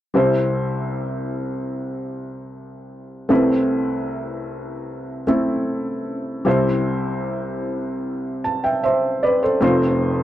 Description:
pop; 76 BPM; 4/4; straight; C major; A4 = 442 Hz
felt-muted upright piano; accompaniment; 0.1-10.2 s; F1 to A5; -19 LUFS; equal
moderate booth ambience, RT60 0.2 s; dry, close 1970s-style studio recording; -19 LUFS; side -12 dB against mid
0.1-10.2 A section
0.1 C; 3.3 Amadd9/C; 6.5 C; 9.6 F

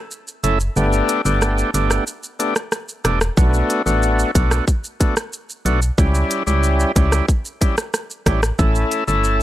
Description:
dancehall; 92 BPM; 4/4; straight; B minor; A4 = 439 Hz
island pop drum kit; drums; 0.1-9.4 s; hi-hat, kick drum, rim click, shaker; -19 LUFS; equal
overdriven tonewheel organ; accompaniment; 0.4-9.4 s; G3 to A4; -20 LUFS; left 1 dB; slow rotary speaker
solid FM bass; bass; 0.4-9.4 s; E1 to C#2; -18 LUFS; equal
little or no reverb; dry, gritty hardware recording; -16 LUFS; side -13 dB against mid
0.0-9.4 A section
break 0.0-3.4
0.0 A; 0.8 Gadd9; 3.4 Bm7; 6.0 C#dim; 8.6 A

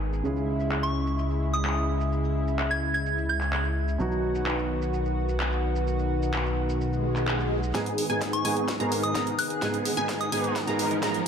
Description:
EDM, festival progressive house; 128 BPM; 4/4; straight; G# minor; A4 = 439 Hz
warm grand piano; accompaniment; 0.0-11.2 s; G#2 to G#4; -32 LUFS; right 3 dB; sidechain pumping, ping-pong delay
lush unison pad; sustained chords; 0.0-11.3 s; C#3 to G#4; -31 LUFS; equal; chorus, sidechain pumping
fat analog bass; bass; 0.0-11.2 s; G#1 to C#2; -30 LUFS; left 1 dB; sidechain pumping, high-pass filter
pop drum kit; drums; 0.1-11.2 s; handclaps, hi-hat, shaker, snare drum; -34 LUFS; equal; overdrive, high-pass filter on perc, low-pass filter on perc, high-pass filter on snare, low-pass filter on snare, high-pass filter on hats, low-pass filter on hats, high-pass filter on room, low-pass filter on room
soft synth bell; melody; 0.8-3.9, 8.3-10.6 s; C#6 to G#6; -31 LUFS; equal; chorus, phaser, ping-pong delay
swell and riser; sound effects; 6.9-11.3 s; -36 LUFS; right 1 dB
wide unison pluck; arpeggios; 7.7-11.2 s; G#5 to A#5; -33 LUFS; equal; phaser, sidechain pumping, ping-pong delay
supersaw chords; riff; 7.7-11.2 s; B3 to A#4; -30 LUFS; equal; ensemble chorus, sidechain pumping, low-pass filter
electronic kick drum; drums; 7.7-11.1 s; -37 LUFS; equal
moderate lush hall reverb, RT60 2.1 s; high-pass filter; -24 LUFS; side -7 dB against mid
0.0-7.7 A section; 7.7-11.3 B section
swell 6.9-7.7; build-up 7.7-11.3; drum fill 7.7-11.3; filter sweep on supersaw synth 7.7-11.3
0.2 C#m; 4.0 B; 7.7 G#m

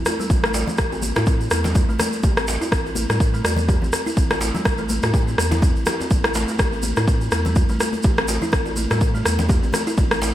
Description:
afro house; 124 BPM; 4/4; swing 56% on 16ths; A minor; A4 = 439 Hz
warm sub bass; bass; 0.0-10.3 s; A1 to A2; -24 LUFS; equal; sidechain pumping
buzzing kalimba; arpeggios; 0.1-10.3 s; G3 to G4; -27 LUFS; right 1 dB; sidechain pumping, low-pass filter, digital delay
electronic rim click; drums; 0.1-10.2 s; -24 LUFS; left 1 dB; overdrive, gated reverb
congas; percussion; 0.1-10.2 s; -31 LUFS; left 3 dB
djembe; percussion; 0.1-10.3 s; -33 LUFS; right 2 dB
tube shaker; percussion; 0.1-10.3 s; -31 LUFS; right 2 dB
electronic kick drum; drums; 0.3-10.1 s; -19 LUFS; equal; overdrive
light reverb, small room ambience; bright 1980s-style digital production; -17 LUFS; side -13 dB against mid
0.0-10.3 A section
0.0 Am

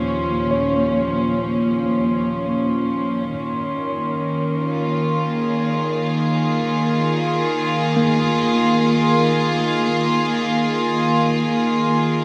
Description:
ambient; free time; A4 = 440 Hz
rich studio string section; sustained chords; 0.0-12.2 s; Bb2 to Ab4; -21 LUFS; equal; low-pass filter
tine electric piano; arpeggios; 0.0-12.2 s; Bb3 to Db6; -28 LUFS; equal; overdrive, tape echo
rich studio cello section; bass; 0.0-3.3 s; Eb2; -30 LUFS; equal
glass harmonica; texture; 0.0-12.2 s; C6; -31 LUFS; equal
wet huge ambient reverb, RT60 8.1 s; cassette tape; -20 LUFS; mono
0.0-3.3 A section; 3.3-12.2 B section
filter sweep on string section 0.0-3.3, 3.3-12.2
0.0 Eb7sus2; 3.3 Eb9sus4

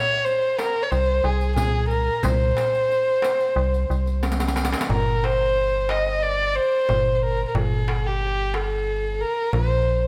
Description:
Arabic maqam ensemble; 91 BPM; 4/4; straight; G maqam bayati from 4.9 s; A4 = 441 Hz
dark violin; melody; 0.0-10.0 s; G4 to Eb5; -24 LUFS; equal
darbuka; percussion; 0.1-9.8 s; -30 LUFS; equal
riq; percussion; 0.3-4.9 s; -33 LUFS; equal
metallic FM bass; bass; 0.9-10.1 s; G1 to C2; -27 LUFS; equal
moderate recital hall reverb, RT60 1.5 s; -22 LUFS; mono
0.0-4.9 A section; 4.9-10.1 B section
drum fill 4.2-4.9

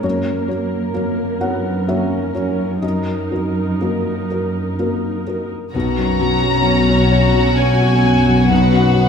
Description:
cinematic, emotional film score for orchestra; 64 BPM; 3/4; uneven beats, rubato; A4 = 442 Hz
dark symphonic viola section; accompaniment; 0.0-9.1 s; F#3 to A#4; -24 LUFS; right 4 dB
felt-muted upright piano; accompaniment; 0.0-9.1 s; B1 to F#5; -21 LUFS; left 2 dB
dark symphonic cello section; bass; 0.0-9.1 s; F#2 to B2; -22 LUFS; right 1 dB
dark symphonic violin section; melody; 5.7-9.1 s; F#5 to A#5; -20 LUFS; left 3 dB
clear studio violin section; second line; 5.7-9.1 s; F#4 to C#5; -22 LUFS; equal
mellow French horn section; sustained chords; 5.7-9.1 s; F#3 to F#4; -23 LUFS; left 2 dB
concert harp; arpeggios; 5.7-9.1 s; B2 to F#4; -20 LUFS; left 5 dB
warm symphonic double bass section; bass; 5.7-9.1 s; B1; -19 LUFS; equal
moderate scoring stage reverb, RT60 1.6 s; minimal, uncompressed stereo recording; -15 LUFS; side -7 dB against mid
0.0-5.7 A section; 5.7-9.1 B section
0.0 F#; 2.8 D#m/F#; 5.7 F#/B; 8.5 B

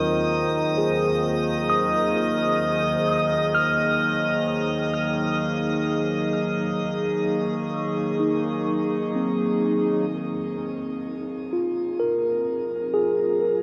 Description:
ambient; 64 BPM; 4/4; straight; A4 = 440 Hz
warbly tape-like pad; sustained chords; 0.0-13.6 s; Eb2 to Db6; -28 LUFS; equal; chorus, built-in reverb, shimmer reverb
mellow tine electric piano; arpeggios; 0.0-13.6 s; C4 to F6; -28 LUFS; equal; tape echo, shimmer reverb
overtone-sweeping drone; drone; 0.0-10.2 s; Eb3; -33 LUFS; equal; chorus, built-in reverb
drifting glass-harmonics texture; texture; 0.0-10.1 s; Eb5 to Eb6; -31 LUFS; equal; chorus, built-in reverb, shimmer reverb
wet huge ambient reverb, RT60 7.6 s; -24 LUFS; mono
0.0-10.1 A section; 10.1-13.6 B section
0.0 Fm7/Eb; 6.3 Ebm7; 10.1 Bb5

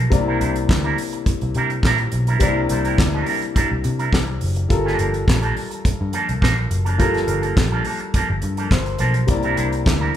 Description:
disco; 105 BPM; 4/4; straight; A4 = 436 Hz
electric guitar with an envelope filter; accompaniment; 0.0-10.2 s; F3 to C5; -24 LUFS; right 4 dB
warm concert grand piano; accompaniment; 0.0-10.2 s; C3 to D5; -24 LUFS; left 4 dB
vintage muted picked electric bass; bass; 0.0-10.1 s; F#1 to C3; -22 LUFS; equal
damped 70s drum kit; drums; 0.1-10.2 s; handclaps, hi-hat, kick drum, snare drum; -20 LUFS; equal
light reverb; band playing live in one room; -17 LUFS; side -10 dB against mid
0.0-10.2 A section
grand piano fill 8.4-9.3
0.1 C9; 4.7 Gm9; 9.3 C9

